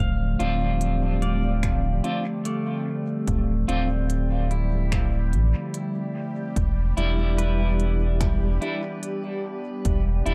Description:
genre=ambient dub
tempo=73 BPM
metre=4/4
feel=swing 58% on 16ths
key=D dorian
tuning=A4 = 441 Hz
part: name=warbly tape-like pad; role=sustained chords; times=0.0-10.3 s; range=D3 to D5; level=-32 LUFS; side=equal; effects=chorus, built-in reverb
part: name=pedal steel guitar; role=arpeggios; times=0.0-10.0 s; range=A3 to F5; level=-38 LUFS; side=equal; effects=tape echo
part: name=warm sub bass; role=bass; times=0.0-10.3 s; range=D1 to A1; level=-25 LUFS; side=equal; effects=tube saturation
part: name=bubbling stepped-filter texture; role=texture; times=0.0-10.3 s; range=G3 to G4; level=-38 LUFS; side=equal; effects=chorus, built-in reverb
part: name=clean electric guitar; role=stabs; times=0.4-10.3 s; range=G3 to F4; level=-33 LUFS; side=equal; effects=harmonic tremolo, dub echo
part: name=organic electronic drum kit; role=drums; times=0.4-10.3 s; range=finger snaps, hi-hat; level=-40 LUFS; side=equal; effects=dub echo
part: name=electronic kick drum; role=drums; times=1.6-10.0 s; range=none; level=-29 LUFS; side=equal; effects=overdrive
room=digital ambience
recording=echo-heavy mix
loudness=-25 LUFS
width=mono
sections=0.0-10.3 A section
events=none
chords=0.0 Dm7; 6.6 Em7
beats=0.81 1.63 2.45 | 3.28 4.10 4.92 5.74 | 6.56 7.38 8.21 9.03 | 9.85

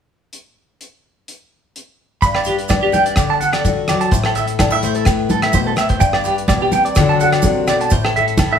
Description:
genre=highlife guitar band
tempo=127 BPM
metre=4/4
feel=straight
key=G major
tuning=A4 = 439 Hz
part: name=damped 70s drum kit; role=drums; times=0.3-8.5 s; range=hi-hat, kick drum, rim click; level=-20 LUFS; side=equal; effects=none
part: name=picked steel-string acoustic guitar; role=accompaniment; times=2.2-8.6 s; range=G2 to B4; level=-19 LUFS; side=left 5 dB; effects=none
part: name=clean electric guitar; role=arpeggios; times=2.2-8.6 s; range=G4 to B5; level=-18 LUFS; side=right 4 dB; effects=tremolo
part: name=congas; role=percussion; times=2.2-8.5 s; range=none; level=-22 LUFS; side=right 1 dB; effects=none
part: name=maracas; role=percussion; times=2.2-8.5 s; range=none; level=-31 LUFS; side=right 5 dB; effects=none
part: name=agogo bells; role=percussion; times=2.3-8.5 s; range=none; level=-24 LUFS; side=right 1 dB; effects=none
room=moderate large studio reverb, RT60 1.0 s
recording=band playing live in one room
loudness=-13 LUFS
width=side -8 dB against mid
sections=0.3-2.2 A section; 2.2-8.6 B section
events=none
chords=0.3 N.C.; 2.2 G; 3.2 D; 4.1 Am; 6.0 G; 7.0 D; 7.9 Am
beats=| 0.33 0.81 1.28 1.75 | 2.23 2.70 3.17 3.65 | 4.12 4.60 5.07 5.54 | 6.02 6.49 6.97 7.44 | 7.91 8.39

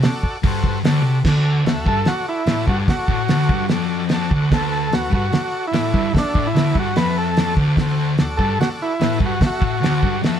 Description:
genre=garage rock duo or trio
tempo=147 BPM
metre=4/4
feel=straight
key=D mixolydian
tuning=A4 = 440 Hz
part: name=overdriven combo organ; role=sustained chords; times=0.0-10.4 s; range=F#4 to A5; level=-29 LUFS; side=equal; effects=none
part: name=cloth-damped thuddy drum kit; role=drums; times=0.0-10.3 s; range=crash cymbal, hi-hat, kick drum, snare drum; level=-20 LUFS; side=equal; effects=none
part: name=fuzz guitar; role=riff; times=0.4-10.4 s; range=D2 to C3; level=-19 LUFS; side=left 1 dB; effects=distortion
part: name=combo organ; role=melody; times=1.9-10.2 s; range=D4 to B4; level=-22 LUFS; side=right 1 dB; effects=none
room=moderate studio reverb, RT60 0.6 s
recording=band playing live in one room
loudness=-16 LUFS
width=side -9 dB against mid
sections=0.0-1.3 A section; 1.3-10.4 B section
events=transistor combo organ fill 3.9-4.5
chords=0.0 D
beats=0.03 0.43 0.84 | 1.25 1.66 2.07 2.48 | 2.88 3.29 3.70 4.11 | 4.52 4.92 5.33 5.74 | 6.14 6.55 6.96 7.37 | 7.78 8.18 8.59 9.00 | 9.41 9.82 10.23

